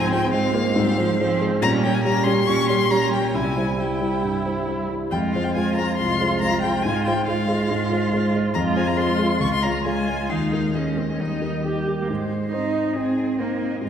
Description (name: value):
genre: quick classical-period movement for piano quartet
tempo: 139 BPM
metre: 4/4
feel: straight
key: F minor, Ab major from 8.5 s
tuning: A4 = 443 Hz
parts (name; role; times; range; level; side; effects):
- rich violin; melody; 0.0-13.9 s; Eb4 to Db6; -27 LUFS; left 4 dB; none
- warm cello; second line; 0.0-13.9 s; F3 to Eb4; -26 LUFS; right 3 dB; none
- dark concert grand piano; accompaniment; 0.0-13.9 s; C2 to Db5; -23 LUFS; equal; none
- rich viola; accompaniment; 0.0-13.7 s; Bb3 to C5; -27 LUFS; right 2 dB; none
room: wet concert hall reverb, RT60 1.8 s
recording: none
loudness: -19 LUFS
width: side -8 dB against mid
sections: 0.0-12.1 A section; 12.1-13.9 B section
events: none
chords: 0.0 Fm/Ab; 1.6 Gdim/Bb; 3.3 C; 5.1 Fm; 6.8 Fm/Ab; 8.5 Fm; 9.4 Db; 10.3 Ebsus4; 11.2 Eb; 12.1 Ab